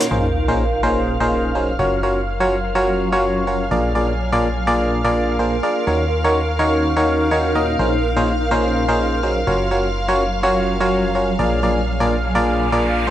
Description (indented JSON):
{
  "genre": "house",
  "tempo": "125 BPM",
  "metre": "4/4",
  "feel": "swing 56% on 16ths",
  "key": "Bb minor",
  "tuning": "A4 = 442 Hz",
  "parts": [
    { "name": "string machine, violins", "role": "sustained chords", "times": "0.0-13.1 s", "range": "Bb4 to F6", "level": "-27 LUFS", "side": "equal", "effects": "ensemble chorus, vintage 12-bit sampler grit" },
    { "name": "barking FM electric piano", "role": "riff", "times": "0.0-13.1 s", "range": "Bb2 to Eb5", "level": "-18 LUFS", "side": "equal", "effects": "chorus, tape echo" },
    { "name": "granular cloud pad", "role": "texture", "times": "0.0-13.1 s", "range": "Gb3 to C6", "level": "-24 LUFS", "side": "equal", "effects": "built-in reverb" },
    { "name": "solid FM bass", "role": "bass", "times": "0.1-13.1 s", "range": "Gb1 to Eb2", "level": "-24 LUFS", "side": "equal", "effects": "none" },
    { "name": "sub drop and riser", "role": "sound effects", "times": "0.1-2.0, 12.2-13.1 s", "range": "none", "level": "-27 LUFS", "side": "equal", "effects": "none" }
  ],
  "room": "light reverb",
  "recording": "dry, gritty hardware recording",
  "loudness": "-16 LUFS",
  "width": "side -12 dB against mid",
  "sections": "0.1-13.1 A section",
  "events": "impact 0.1-2.0; riser 12.2-13.1",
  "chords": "0.1 Bbm11; 1.8 Gbmaj7; 3.7 Bb7; 5.9 Ebm7; 7.8 Bbm11; 9.5 Gbmaj7; 11.4 Bb7",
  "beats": "| 0.11 0.59 1.07 1.55 | 2.03 2.51 2.99 3.47 | 3.95 4.43 4.91 5.39 | 5.87 6.35 6.83 7.31 | 7.79 8.27 8.75 9.23 | 9.71 10.19 10.67 11.15 | 11.63 12.11 12.59 13.07"
}